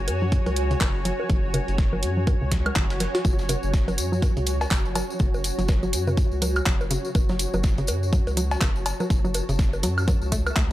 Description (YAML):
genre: minimal techno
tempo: 123 BPM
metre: 4/4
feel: swing 59% on 16ths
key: F# minor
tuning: A4 = 440 Hz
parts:
  - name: round analog bass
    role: bass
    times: 0.0-10.7 s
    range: F#1 to F#2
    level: -27 LUFS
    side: equal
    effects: sidechain pumping
  - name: granular cloud pad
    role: texture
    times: 0.0-10.7 s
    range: F#4 to A5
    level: -30 LUFS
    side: equal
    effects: built-in reverb, sidechain pumping
  - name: dusty soul sampler-style drum kit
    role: drums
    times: 0.1-10.7 s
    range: hi-hat, snare drum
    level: -40 LUFS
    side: right 1 dB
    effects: sidechain pumping on hats, high-pass filter on hats, high-pass filter on snare, high-pass filter on room
  - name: house drum kit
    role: drums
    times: 0.1-10.7 s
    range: handclaps, hi-hat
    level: -28 LUFS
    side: right 1 dB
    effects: none
  - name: bongos, woodblock and cowbell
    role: percussion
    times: 0.1-10.5 s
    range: none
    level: -32 LUFS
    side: left 1 dB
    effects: dub echo
  - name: hollow square pluck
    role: riff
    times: 0.2-10.6 s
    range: C#3 to F#4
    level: -30 LUFS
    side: equal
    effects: chorus, sidechain pumping, digital delay
  - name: electronic kick drum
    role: drums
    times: 0.3-10.7 s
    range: none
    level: -22 LUFS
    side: equal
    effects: none
  - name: tambourine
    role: percussion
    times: 3.2-10.7 s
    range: none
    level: -36 LUFS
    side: left 3 dB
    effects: none
room: digital ambience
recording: none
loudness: -21 LUFS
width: side -15 dB against mid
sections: 0.0-10.7 A section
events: filter sweep on synth arpeggio sound 0.0-10.7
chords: 0.0 F#m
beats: 0.32 0.81 | 1.30 1.78 2.27 2.76 | 3.25 3.74 4.22 4.71 | 5.20 5.69 6.17 6.66 | 7.15 7.64 8.13 8.61 | 9.10 9.59 10.08 10.57